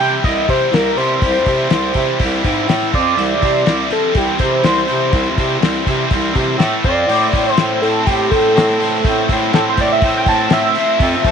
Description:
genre	indie rock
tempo	123 BPM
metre	4/4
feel	straight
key	unclear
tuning	A4 = 440 Hz
part	overdriven synth lead	melody	0.0-11.3 s	G4 to A5	-17 LUFS	equal	chorus, phaser
part	raw garage guitar	riff	0.0-11.3 s	A2 to C5	-17 LUFS	equal	overdrive
part	clear bass clarinet	bass	0.0-11.3 s	C2 to F3	-21 LUFS	right 1 dB	none
part	cloth-damped thuddy drum kit	drums	0.2-11.3 s	hi-hat, kick drum, snare drum	-18 LUFS	left 2 dB	none
room	light reverb, small room ambience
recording	1960s-style stereo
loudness	-13 LUFS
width	side -7 dB against mid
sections	0.0-11.3 A section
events	analog synth lead solo 0.0-11.3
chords	0.0 C; 2.7 A5; 2.9 F5; 3.2 C; 6.6 A5; 6.8 F5; 7.1 Am

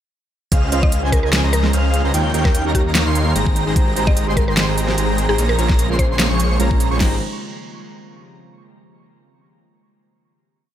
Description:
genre	future bass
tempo	148 BPM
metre	4/4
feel	swing 54% on 16ths, half-time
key	Ab major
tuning	A4 = 439 Hz
part	airy breathy pad	sustained chords	0.5-7.2 s	Db3 to G5	-31 LUFS	equal	none
part	airy dreamy lead	arpeggios	0.5-7.2 s	F5 to Db6	-26 LUFS	right 1 dB	chorus, phaser, sidechain pumping, tape echo
part	dense compressed supersaw	riff	0.5-7.2 s	Ab3 to Db6	-24 LUFS	right 1 dB	sidechain pumping
part	wide detuned saw bass	bass	0.5-7.2 s	Ab1 to Eb2	-19 LUFS	equal	chorus, sidechain pumping
part	pop drum kit	drums	0.5-7.1 s	crash cymbal, kick drum, snare drum	-17 LUFS	equal	none
part	pop drum kit	drums	0.5-6.9 s	hi-hat, snare drum	-21 LUFS	equal	none
part	glassy digital keys	accompaniment	0.7-7.2 s	Ab3 to Db5	-26 LUFS	right 4 dB	chorus, sidechain pumping, tape echo
part	mallet-like synth pluck	melody	0.8-6.3 s	G4 to Eb5	-25 LUFS	left 1 dB	chorus, sidechain pumping, digital delay
room	light reverb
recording	none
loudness	-15 LUFS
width	side -11 dB against mid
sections	0.5-7.0 drop; 7.0-8.6 final chord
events	drop 0.5-7.0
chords	0.5 Dbmaj7; 2.1 Eb7; 3.6 Abmaj7; 5.4 Bbm7; 7.0 Abmaj7

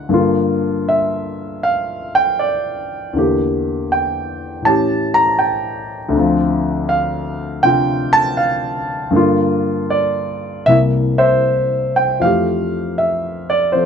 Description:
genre	solo jazz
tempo	79 BPM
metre	4/4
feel	swing 68% on 8ths, rubato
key	F major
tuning	A4 = 439 Hz
part	dark concert grand piano	solo	0.0-13.9 s	C2 to Bb5	-15 LUFS	equal	none
room	light reverb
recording	none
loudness	-14 LUFS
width	side -7 dB against mid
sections	0.0-12.2 A section; 12.2-13.9 B section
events	none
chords	0.1 Gm7; 3.2 Em7b5; 4.7 A7; 6.1 Dm7; 9.1 Gm7; 10.7 C7; 12.2 Fmaj9

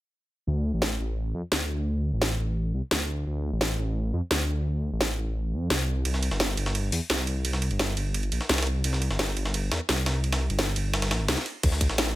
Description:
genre	liquid drum and bass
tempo	172 BPM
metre	4/4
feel	straight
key	D minor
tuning	A4 = 440 Hz
part	dark detuned saw bass	bass	0.5-12.1 s	G1 to F2	-27 LUFS	equal	none
part	drum and bass drum kit	drums	0.8-12.1 s	crash cymbal, hi-hat, snare drum	-26 LUFS	equal	studio reverb
part	breakbeat sampler-style drum kit	drums	6.1-12.1 s	hi-hat, ride cymbal, snare drum	-30 LUFS	right 1 dB	high-pass filter on cymbals, studio reverb, high-pass filter on snare, high-pass filter on hats
part	electronic kick drum	drums	11.6-11.9 s	none	-24 LUFS	equal	studio reverb
room	little or no reverb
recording	none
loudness	-25 LUFS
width	side -16 dB against mid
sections	0.5-11.6 A section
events	none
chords	none

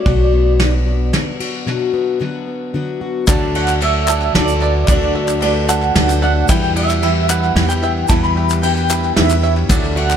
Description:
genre	indie folk with a building arrangement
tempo	112 BPM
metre	3/4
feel	straight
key	D major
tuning	A4 = 441 Hz
part	electric guitar through a small old amp	melody	0.0-10.2 s	D5 to B5	-20 LUFS	right 3 dB	tremolo, tape echo
part	fingerpicked plugged-in steel-string acoustic guitar	accompaniment	0.0-3.2 s	B2 to F#4	-25 LUFS	left 2 dB	tape echo
part	picked steel-string acoustic guitar	accompaniment	0.0-10.2 s	E2 to G4	-22 LUFS	left 8 dB	tape echo
part	upright bass	bass	0.1-10.2 s	B1 to E2	-17 LUFS	equal	none
part	soft brush drum kit	drums	0.1-10.1 s	kick drum, ride cymbal, snare drum	-19 LUFS	equal	tape echo
part	bright concert grand piano	accompaniment	3.3-10.2 s	D2 to E5	-25 LUFS	right 7 dB	tape echo
part	bluegrass banjo	arpeggios	3.3-10.2 s	D4 to E5	-25 LUFS	right 8 dB	tape echo
part	group handclap	percussion	3.3-10.2 s	none	-26 LUFS	left 7 dB	tape echo
part	tube shaker	percussion	3.3-10.2 s	none	-30 LUFS	right 12 dB	tape echo
room	small room ambience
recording	echo-heavy mix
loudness	-13 LUFS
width	side -8 dB against mid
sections	0.0-3.3 A section; 3.3-10.2 B section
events	break 1.7-3.3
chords	0.1 Bm; 3.3 D; 6.5 Em

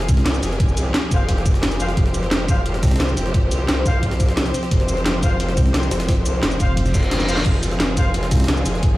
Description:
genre	dark technical drum and bass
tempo	175 BPM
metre	4/4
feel	straight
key	F minor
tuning	A4 = 440 Hz
part	rich studio string section	sustained chords	0.0-9.0 s	F3 to C5	-26 LUFS	equal	sidechain pumping
part	growl bass	bass	0.0-9.0 s	F1 to C2	-22 LUFS	equal	distortion, chorus, overdrive, sidechain pumping
part	jungle sampler-style drum kit	drums	0.0-8.9 s	hi-hat, snare drum	-31 LUFS	equal	high-pass filter on hats, high-pass filter on snare
part	vowel-sweep wobble bass	bass	0.1-0.2, 2.8-3.0, 5.6-8.5 s	F1 to C2	-18 LUFS	equal	chorus
part	drum and bass drum kit	drums	0.1-8.9 s	cabasa, crash cymbal, hi-hat, snare drum	-24 LUFS	equal	none
part	electronic kick drum	drums	0.1-8.9 s	none	-18 LUFS	equal	none
part	warm brass ensemble	stabs	1.1-8.1 s	F4 to F5	-31 LUFS	left 2 dB	dub echo
part	reverse cymbal	sound effects	6.9-7.5 s	none	-28 LUFS	equal	none
room	digital ambience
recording	played on a big sound system in a bare room, large studio reverb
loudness	-16 LUFS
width	side -17 dB against mid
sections	0.0-9.0 A section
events	reverse cymbal 6.9-7.5; drum fill 7.1-7.5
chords	0.0 Fm

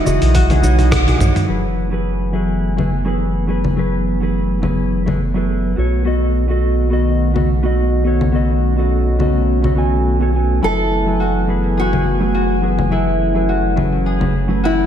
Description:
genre	sunset chillout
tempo	105 BPM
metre	4/4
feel	swing 54% on 16ths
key	F# dorian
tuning	A4 = 436 Hz
part	mellow electric guitar	accompaniment	0.0-14.9 s	E3 to G#5	-20 LUFS	moving between left 3 dB and right 4 dB	auto-pan, ping-pong delay, slapback echo
part	airy breathy pad	sustained chords	0.0-14.9 s	D#3 to G#5	-24 LUFS	right 2 dB	chorus
part	concert harp	arpeggios	0.0-3.4, 10.6-14.9 s	E4 to A4	-23 LUFS	left 2 dB	ping-pong delay, slapback echo
part	round analog bass	bass	0.1-14.9 s	E1 to B1	-18 LUFS	equal	none
part	dusty soul sampler-style drum kit	drums	0.1-14.3 s	cabasa, congas, hi-hat, rim click, toms	-21 LUFS	left 1 dB	none
part	electronic kick drum	drums	0.3-1.0 s	none	-20 LUFS	equal	none
part	nylon-string guitar	melody	10.6-14.9 s	E4 to A4	-21 LUFS	left 1 dB	ping-pong delay, slapback echo
room	moderate lush hall reverb, RT60 1.6 s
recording	big arena sound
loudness	-14 LUFS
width	side -9 dB against mid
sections	0.0-1.5 A section; 1.5-14.9 B section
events	filter sweep on clean electric guitar 0.0-1.5; drum fill 0.3-1.5; band accent 0.9; filter sweep on analog synth pad 1.5-14.9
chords	0.0 Emaj9; 1.5 F#m11; 5.8 B7; 10.6 F#m11

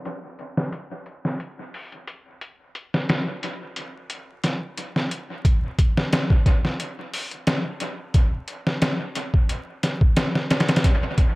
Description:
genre	trip hop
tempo	89 BPM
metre	4/4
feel	swing 54% on 16ths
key	none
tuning	none
part	trip hop sampler-style drum kit	drums	0.1-11.4 s	hi-hat, kick drum, snare drum	-21 LUFS	equal	small room ambience, dub echo
room	light reverb, digital ambience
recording	echo-heavy mix, vinyl crackle, low-pass filter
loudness	-21 LUFS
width	side -22 dB against mid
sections	0.0-5.4 A section; 5.4-11.4 B section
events	filter sweep 0.0-5.4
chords	none

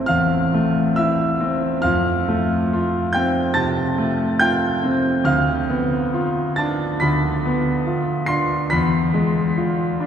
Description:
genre	classical, romantic nocturne for solo piano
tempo	70 BPM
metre	4/4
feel	rubato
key	unclear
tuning	A4 = 443 Hz
part	clear concert grand piano	solo	0.0-10.1 s	A1 to C7	-17 LUFS	equal	none
room	wet cathedral reverb, RT60 6.0 s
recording	heard from further back in the room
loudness	-17 LUFS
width	side -8 dB against mid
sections	0.0-10.1 A section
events	none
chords	0.0 Am; 1.8 F; 5.3 Bdim/D; 8.7 E(b9)

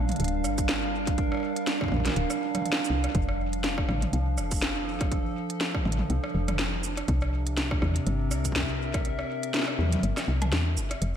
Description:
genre	IDM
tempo	122 BPM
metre	4/4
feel	swing 56% on 16ths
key	unclear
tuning	A4 = 440 Hz
part	warbly tape-like pad	sustained chords	0.0-11.0 s	C3 to F5	-31 LUFS	right 2 dB	chorus, built-in reverb, vintage 12-bit sampler grit
part	woody FM bass	bass	0.0-11.2 s	D1 to E2	-28 LUFS	equal	tube saturation
part	organic electronic drum kit	drums	0.1-11.1 s	hi-hat, rim click, shaker, snare drum, toms	-30 LUFS	equal	gated reverb, ping-pong delay
part	electronic kick drum	drums	0.6-9.0 s	none	-30 LUFS	equal	none
room	light reverb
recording	bright 1980s-style digital production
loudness	-25 LUFS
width	side -9 dB against mid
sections	0.0-11.0 A section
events	kick drops out 9.1-11.0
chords	0.0 Gm7; 3.1 F6; 7.1 C7

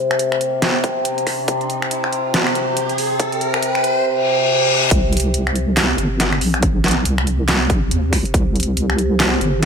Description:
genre	deep dubstep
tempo	140 BPM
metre	4/4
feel	swing 59% on 16ths, half-time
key	unclear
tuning	A4 = 440 Hz
part	overtone-sweeping drone	sustained chords	0.0-9.7 s	C3	-20 LUFS	left 1 dB	chorus, built-in reverb
part	riser and reverse cymbal	sound effects	1.2-4.9 s	none	-23 LUFS	left 2 dB	none
part	dubstep drum kit	drums	0.1-9.7 s	finger snaps, handclaps, hi-hat, snare drum	-20 LUFS	right 1 dB	overdrive
part	electronic kick drum	drums	0.8-8.4 s	none	-19 LUFS	equal	overdrive, high-pass filter on kick, high-pass filter on room
part	deep soft wobble bass	bass	4.9-9.7 s	G1 to Eb2	-19 LUFS	equal	chorus
room	moderate lush hall reverb, RT60 2.0 s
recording	none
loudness	-15 LUFS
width	side -6 dB against mid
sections	0.0-4.9 A section; 4.9-9.7 B section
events	build-up 0.0-4.9; riser 1.2-4.1; reverse cymbal 4.1-4.9; drop 4.9-9.7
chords	0.0 N.C.; 4.9 C5

